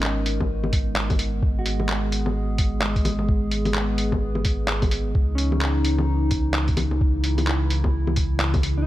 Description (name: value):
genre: future garage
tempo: 129 BPM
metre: 4/4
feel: swing 60% on 16ths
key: unclear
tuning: A4 = 440 Hz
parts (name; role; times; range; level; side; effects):
- mellow electric guitar; accompaniment; 0.0-8.9 s; G#3 to F#4; -32 LUFS; equal; lush chorus, sidechain pumping, tape echo
- warbly tape-like pad; sustained chords; 0.0-8.9 s; C#3 to A#4; -28 LUFS; equal; chorus, built-in reverb, sidechain pumping
- warm sub bass; bass; 0.0-8.9 s; G#1 to C#2; -24 LUFS; equal; tube saturation, sidechain pumping
- lo-fi sampler-style drum kit; drums; 0.0-8.7 s; bongos, handclaps, hi-hat; -26 LUFS; left 1 dB; overdrive
- electronic kick drum; drums; 0.4-8.6 s; none; -23 LUFS; equal; overdrive
room: light reverb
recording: none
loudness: -20 LUFS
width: side -15 dB against mid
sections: 0.0-8.9 A section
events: none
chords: 0.0 G#madd9; 5.1 C#madd9